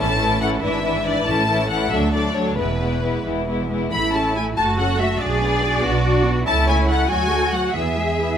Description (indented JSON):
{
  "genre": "quick classical-period movement for string orchestra",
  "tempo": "93 BPM (dotted quarters)",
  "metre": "6/8",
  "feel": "rubato",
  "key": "A major",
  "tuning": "A4 = 439 Hz",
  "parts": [
    { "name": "rich studio violin section", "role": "melody", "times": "0.0-8.4 s", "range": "B4 to B5", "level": "-23 LUFS", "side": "left 4 dB", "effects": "none" },
    { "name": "warm symphonic violin section", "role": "second line", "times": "0.0-8.4 s", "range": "B3 to B5", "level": "-25 LUFS", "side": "left 2 dB", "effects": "none" },
    { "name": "rich symphonic viola section", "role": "accompaniment", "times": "0.0-8.4 s", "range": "E3 to C#5", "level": "-25 LUFS", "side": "right 1 dB", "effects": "none" },
    { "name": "rich symphonic cello section", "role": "bass", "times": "0.0-8.4 s", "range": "D2 to G#4", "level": "-24 LUFS", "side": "right 1 dB", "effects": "none" },
    { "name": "rich symphonic double bass section", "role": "bass", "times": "0.0-8.4 s", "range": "E1 to E2", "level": "-24 LUFS", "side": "right 2 dB", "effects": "none" }
  ],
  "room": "moderate scoring stage reverb, RT60 1.6 s",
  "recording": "none",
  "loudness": "-17 LUFS",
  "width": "side -8 dB against mid",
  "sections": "0.0-3.9 A section; 3.9-8.4 B section",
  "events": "none",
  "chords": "0.0 A; 0.6 E7/G#; 1.3 A; 1.9 D; 2.6 E; 3.9 A; 4.6 F#m; 5.2 Bm; 6.5 A/C#; 7.1 D; 7.8 E"
}